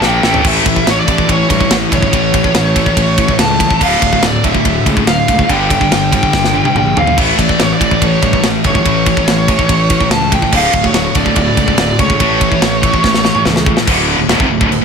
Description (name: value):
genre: heavy metal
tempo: 143 BPM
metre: 4/4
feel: straight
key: unclear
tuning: A4 = 441 Hz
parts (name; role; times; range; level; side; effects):
- high-gain lead guitar; melody; 0.0-13.4 s; C#5 to A5; -16 LUFS; right 1 dB; distortion, digital delay
- cranked stack guitar; riff; 0.0-14.8 s; D2 to Bb3; -19 LUFS; equal; overdrive
- distorted electric guitar; riff; 0.0-14.8 s; D2 to Bb3; -19 LUFS; right 12 dB; distortion
- scooped high-gain guitar; riff; 0.0-14.8 s; D2 to Bb3; -17 LUFS; left 12 dB; distortion
- fuzz fingered electric bass; bass; 0.0-14.8 s; D1 to G2; -19 LUFS; equal; overdrive
- tight metal drum kit; drums; 0.0-14.8 s; china cymbal, crash cymbal, kick drum, ride cymbal, snare drum, toms; -15 LUFS; equal; none
room: light reverb, small room ambience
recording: none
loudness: -10 LUFS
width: side -6 dB against mid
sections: 0.4-13.9 A section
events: drum fill 0.0-0.4, 6.3-7.2, 13.0-13.9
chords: 0.4 A; 3.8 Dm; 5.5 Gm; 7.2 A; 10.5 D5; 12.2 A; 13.9 Dm